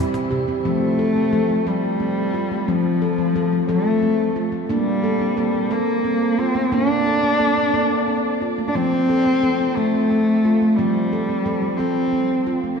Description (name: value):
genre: world meditative, meditative tuned percussion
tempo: 59 BPM (dotted quarters)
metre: 6/8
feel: straight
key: F major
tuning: A4 = 439 Hz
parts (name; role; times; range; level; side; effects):
- dark cello; melody; 0.0-12.5 s; E3 to D4; -19 LUFS; left 1 dB; shimmer reverb, ping-pong delay
- icy glass pad; sustained chords; 0.0-0.6 s; C3 to E4; -39 LUFS; equal; chorus, built-in reverb, shimmer reverb
- handpan; arpeggios; 0.0-12.8 s; C3 to A4; -22 LUFS; equal; shimmer reverb, ping-pong delay
- cajon; percussion; 0.1-0.6 s; none; -27 LUFS; left 2 dB; none
room: wet church reverb, RT60 3.5 s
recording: dark, warm production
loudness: -17 LUFS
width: side -6 dB against mid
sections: 0.6-12.8 A section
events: none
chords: 0.0 C; 0.6 F; 4.7 Bb; 8.8 F